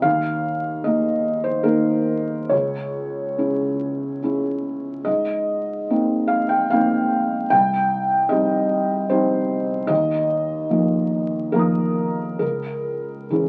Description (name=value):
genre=neoclassical minimalist piano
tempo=67-76 BPM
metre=3/4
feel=rubato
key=unclear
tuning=A4 = 441 Hz
part: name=felt-muted upright piano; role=solo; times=0.0-13.5 s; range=C2 to Eb6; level=-21 LUFS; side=equal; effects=none
room=moderate studio reverb, RT60 0.5 s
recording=very old 78 rpm record, vinyl crackle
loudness=-21 LUFS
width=mono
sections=0.0-13.5 A section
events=none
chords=0.0 Ebsus2; 2.5 Dbm; 5.1 Abadd9; 7.5 Cm; 9.9 Ebsus2; 12.4 Dbm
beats=| 0.04 0.85 1.67 | 2.52 3.38 4.22 | 5.06 5.89 6.71 | 7.52 8.31 9.10 | 9.90 10.70 11.54 | 12.41 13.31